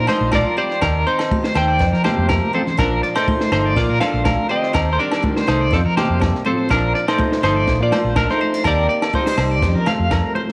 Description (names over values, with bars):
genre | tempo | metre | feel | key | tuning
highlife guitar band | 123 BPM | 4/4 | swing 53% on 16ths | Bb major | A4 = 440 Hz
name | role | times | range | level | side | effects
semi-hollow electric guitar | melody | 0.0-10.1 s | Bb3 to G5 | -23 LUFS | equal | analog chorus, slapback echo
picked steel-string acoustic guitar | accompaniment | 0.0-10.5 s | F2 to G4 | -32 LUFS | equal | none
electric guitar at the edge of break-up | arpeggios | 0.0-10.5 s | Bb4 to F5 | -26 LUFS | equal | tremolo, slapback echo
fingered electric bass | bass | 0.0-10.2 s | G1 to F3 | -22 LUFS | equal | transformer saturation
compact cocktail drum kit | drums | 0.1-10.5 s | kick drum, snare drum | -26 LUFS | equal | none
agogo bells | percussion | 0.1-10.2 s | none | -31 LUFS | equal | none
congas | percussion | 0.1-10.5 s | none | -29 LUFS | equal | none
warm trombone | second line | 2.0-10.1 s | C3 to D4 | -30 LUFS | equal | none
room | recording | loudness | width
light reverb, small room ambience | none | -18 LUFS | mono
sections
0.0-10.5 A section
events
drum fill 2.2-2.8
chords
0.0 Bb; 0.8 Eb6; 1.8 Fsus2; 2.8 Bb; 4.7 Eb6; 5.7 Fadd9; 6.7 Bb; 8.7 Eb6; 9.6 Fadd9